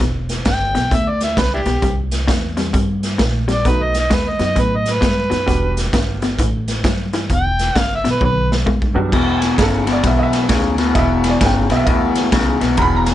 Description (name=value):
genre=electric blues shuffle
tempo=132 BPM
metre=4/4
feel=swing 63% on 8ths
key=E minor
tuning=A4 = 441 Hz
part: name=electric guitar through a small old amp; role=riff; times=0.0-13.1 s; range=E2 to A3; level=-20 LUFS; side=left 3 dB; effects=none
part: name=upright bass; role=bass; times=0.0-13.1 s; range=E1 to A2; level=-21 LUFS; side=equal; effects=none
part: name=raw garage drum kit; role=drums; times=0.0-13.1 s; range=crash cymbal, hi-hat, kick drum, ride cymbal, snare drum, toms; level=-19 LUFS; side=equal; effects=none
part: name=overdriven harmonica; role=melody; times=0.5-8.5 s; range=D4 to G5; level=-19 LUFS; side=equal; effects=none
part: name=clear upright piano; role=accompaniment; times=3.6-13.1 s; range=E2 to B5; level=-22 LUFS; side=right 4 dB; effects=none
room=light reverb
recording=nothing above 10.3 kHz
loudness=-14 LUFS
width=side -13 dB against mid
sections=0.0-9.1 A section; 9.1-13.1 B section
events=drum fill 8.2-9.1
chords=0.0 Em7; 1.8 C7; 3.7 B7; 5.5 Em9; 6.4 A5; 7.3 Em; 8.2 B5; 9.1 Em7